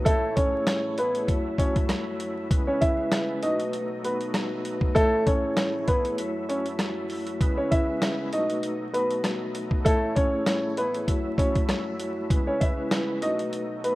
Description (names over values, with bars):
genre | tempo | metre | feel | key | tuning
hip hop, boom-bap hip-hop | 98 BPM | 4/4 | swing 54% on 16ths | unclear | A4 = 440 Hz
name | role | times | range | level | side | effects
warm upright piano | melody | 0.0-13.9 s | A3 to E5 | -26 LUFS | equal | high-pass filter, low-pass filter, ping-pong delay
vibraphone with soft mallets | accompaniment | 0.0-13.9 s | G#3 to C#5 | -31 LUFS | left 1 dB | cassette tape, high-pass filter, low-pass filter
overdriven tonewheel organ | sustained chords | 0.0-13.9 s | F#2 to E4 | -36 LUFS | equal | chorus vibrato, wide subtle chorus, high-pass filter, low-pass filter
dusty soul sampler-style drum kit | drums | 0.1-13.9 s | hi-hat, kick drum, rim click, snare drum | -26 LUFS | equal | none
room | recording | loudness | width
light reverb, small room ambience | rough home demo mix, vinyl crackle | -23 LUFS | side -18 dB against mid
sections
0.0-13.9 A section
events
break 6.2-7.4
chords
0.1 Amaj7; 1.3 F#m7; 2.5 C#m7; 3.4 B7; 5.0 Amaj7; 6.2 F#m7; 7.4 C#m7; 8.3 B7; 9.9 Amaj7; 11.1 F#m7; 12.3 C#m7; 13.2 B7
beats
| 0.06 0.67 1.28 1.90 | 2.51 3.12 3.73 4.34 | 4.96 5.57 6.18 6.79 | 7.41 8.02 8.63 9.24 | 9.86 10.47 11.08 11.69 | 12.30 12.92 13.53